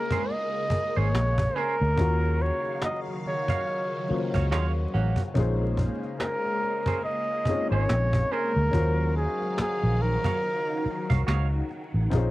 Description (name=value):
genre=R&B, neo-soul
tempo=71 BPM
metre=4/4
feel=swing 57% on 16ths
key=unclear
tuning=A4 = 440 Hz
part: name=trumpet with bucket mute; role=melody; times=0.0-11.3 s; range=Ab4 to Eb5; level=-29 LUFS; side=equal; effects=cassette tape
part: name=warm upright piano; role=accompaniment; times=0.0-12.3 s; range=Bb3 to Db5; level=-34 LUFS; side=left 4 dB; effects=cassette tape
part: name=phased string machine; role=sustained chords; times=0.0-12.3 s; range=Db3 to F5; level=-34 LUFS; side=equal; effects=ensemble chorus, phaser, cassette tape
part: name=clean electric guitar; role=second line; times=0.1-11.5 s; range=Db4 to F5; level=-33 LUFS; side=right 7 dB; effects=cassette tape
part: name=cajon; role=drums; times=0.1-12.3 s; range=none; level=-30 LUFS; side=equal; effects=none
part: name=vintage muted fingered electric bass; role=bass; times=0.7-12.3 s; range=Ab1 to Eb2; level=-24 LUFS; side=equal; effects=none
part: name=warm horn section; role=stabs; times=4.5-5.2 s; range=F3 to Gb4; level=-36 LUFS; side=right 6 dB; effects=cassette tape
room=light reverb, small room ambience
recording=home recording on cassette, vinyl crackle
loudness=-24 LUFS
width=side -17 dB against mid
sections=0.0-12.3 A section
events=band accent 2.0-5.4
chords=0.0 Bbm9; 2.0 Ebm9; 5.4 Bbm9; 8.7 Ebm9